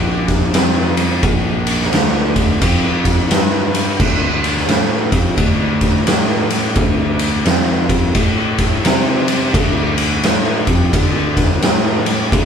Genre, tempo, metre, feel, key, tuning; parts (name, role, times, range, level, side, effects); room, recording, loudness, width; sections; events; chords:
stoner and doom metal; 87 BPM; 4/4; swing 63% on 8ths; D minor; A4 = 440 Hz
fuzz picked electric bass; bass; 0.0-12.4 s; Bb1 to C3; -18 LUFS; equal; overdrive
oversized low-tuned drum kit; drums; 0.3-12.4 s; crash cymbal, kick drum, ride cymbal, snare drum; -14 LUFS; equal
little or no reverb; band playing live in one room; -13 LUFS; side -7 dB against mid
0.0-12.4 A section